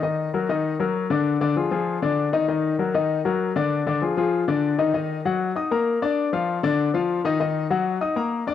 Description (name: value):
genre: latin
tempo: 195 BPM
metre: 4/4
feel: straight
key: unclear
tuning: A4 = 440 Hz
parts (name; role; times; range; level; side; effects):
- clear baby grand piano; solo; 0.0-8.5 s; D3 to Eb6; -21 LUFS; left 5 dB; cassette tape
room: moderate spring reverb, RT60 2.5 s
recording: home recording on cassette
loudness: -21 LUFS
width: side -10 dB against mid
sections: 0.0-4.9 A section; 4.9-8.5 B section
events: none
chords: 0.0 Ebm; 1.3 Ddim; 2.5 Ebm; 3.7 Ddim; 4.9 Ebm; 6.2 Dm; 7.4 Ebm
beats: | 0.03 0.33 0.64 0.95 | 1.25 1.56 1.87 2.18 | 2.48 2.79 3.10 3.41 | 3.71 4.02 4.33 4.63 | 4.94 5.25 5.56 5.86 | 6.17 6.48 6.78 7.09 | 7.40 7.70 8.01 8.32